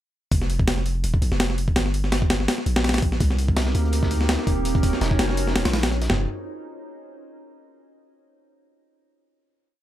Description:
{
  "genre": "drum and bass, jungle",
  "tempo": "166 BPM",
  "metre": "4/4",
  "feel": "swing 55% on 16ths",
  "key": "unclear",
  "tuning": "A4 = 439 Hz",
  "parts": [
    { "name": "long sustained 808-style bass", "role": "bass", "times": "0.3-6.3 s", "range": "Eb1 to D2", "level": "-24 LUFS", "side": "equal", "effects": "tube saturation" },
    { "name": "breakbeat sampler-style drum kit", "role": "drums", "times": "0.3-6.2 s", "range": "hi-hat, kick drum, snare drum, toms", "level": "-22 LUFS", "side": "equal", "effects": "none" },
    { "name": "warbly tape-like pad", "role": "sustained chords", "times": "3.4-6.2 s", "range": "Bb3 to Db5", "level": "-29 LUFS", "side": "right 1 dB", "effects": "chorus, built-in reverb, vintage 12-bit sampler grit" },
    { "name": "crunchy breakbeat drum kit", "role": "drums", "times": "3.2-6.1 s", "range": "hi-hat, snare drum", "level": "-36 LUFS", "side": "left 1 dB", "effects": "high-pass filter on hats, high-pass filter on snare, high-pass filter on room" }
  ],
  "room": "little or no reverb",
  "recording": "none",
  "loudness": "-20 LUFS",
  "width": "side -13 dB against mid",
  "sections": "0.3-6.1 drop; 6.1-7.5 final chord",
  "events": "drop 0.3-6.1",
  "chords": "0.3 N.C.; 1.8 Gm; 3.2 Cm7; 4.7 Ebm7; 6.1 Fm7",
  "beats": "| 0.32 0.68 1.04 1.40 | 1.76 2.12 2.48 2.85 | 3.21 3.57 3.93 4.29 | 4.65 5.01 5.38 5.74 | 6.10"
}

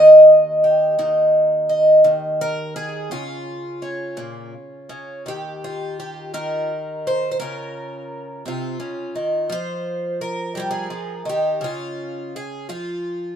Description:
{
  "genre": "folk, solo fingerstyle acoustic guitar",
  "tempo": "56 BPM (dotted quarters)",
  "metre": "6/8",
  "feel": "straight",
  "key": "unclear",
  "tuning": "A4 = 440 Hz",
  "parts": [
    { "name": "picked twelve-string acoustic guitar", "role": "solo", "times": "0.0-13.4 s", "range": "Eb2 to Eb5", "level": "-16 LUFS", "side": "equal", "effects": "none" }
  ],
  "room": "moderate stone room reverb, RT60 1.1 s",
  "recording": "band playing live in one room",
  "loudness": "-16 LUFS",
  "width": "side -8 dB against mid",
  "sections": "0.0-5.3 A section; 5.3-13.4 B section",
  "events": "none",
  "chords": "0.0 Eb; 1.0 N.C.; 3.1 Db6; 5.3 N.C.; 7.4 Bbm/Db; 9.5 F5; 11.6 Db",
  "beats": "| 0.98 2.04 | 3.10 4.17 | 5.25 6.33 | 7.39 8.45 | 9.50 10.55 | 11.61 12.69"
}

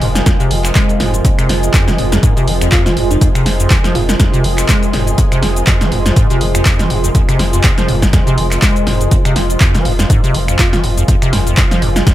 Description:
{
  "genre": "acid house",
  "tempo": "122 BPM",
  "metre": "4/4",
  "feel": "swing 56% on 16ths",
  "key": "F minor",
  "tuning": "A4 = 439 Hz",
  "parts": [
    { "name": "lush unison pad", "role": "sustained chords", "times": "0.0-12.1 s", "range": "C3 to Ab4", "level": "-22 LUFS", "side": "right 1 dB", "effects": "chorus, sidechain pumping" },
    { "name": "liquid acid bass", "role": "riff", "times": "0.0-12.1 s", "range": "F2 to Ab3", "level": "-17 LUFS", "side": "equal", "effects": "tube saturation, analog chorus, digital delay" },
    { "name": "warm sub bass", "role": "bass", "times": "0.0-12.0 s", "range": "F1", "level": "-17 LUFS", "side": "equal", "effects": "sidechain pumping" },
    { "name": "punchy analog drum machine", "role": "drums", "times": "0.0-12.1 s", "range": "finger snaps, handclaps, hi-hat, shaker, snare drum", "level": "-18 LUFS", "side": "equal", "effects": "overdrive" },
    { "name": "granular cloud pad", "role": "texture", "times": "0.0-12.1 s", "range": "F4 to C6", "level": "-22 LUFS", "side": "right 2 dB", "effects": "built-in reverb, sidechain pumping" },
    { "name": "electronic kick drum", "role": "drums", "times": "0.3-12.1 s", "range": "none", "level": "-13 LUFS", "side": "equal", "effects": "none" },
    { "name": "bell-like FM electric piano", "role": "melody", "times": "2.7-4.3, 10.6-10.8 s", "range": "Eb4 to F4", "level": "-24 LUFS", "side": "right 1 dB", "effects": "chorus, tape echo" }
  ],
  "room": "light reverb, digital ambience",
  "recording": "none",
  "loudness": "-10 LUFS",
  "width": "side -14 dB against mid",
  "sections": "0.0-12.1 A section",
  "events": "none",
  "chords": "0.0 Fm",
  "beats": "0.26 0.76 | 1.25 1.74 2.23 2.72 | 3.21 3.71 4.20 4.69 | 5.18 5.67 6.17 6.66 | 7.15 7.64 8.13 8.62 | 9.12 9.61 10.10 10.59 | 11.08 11.57 12.07"
}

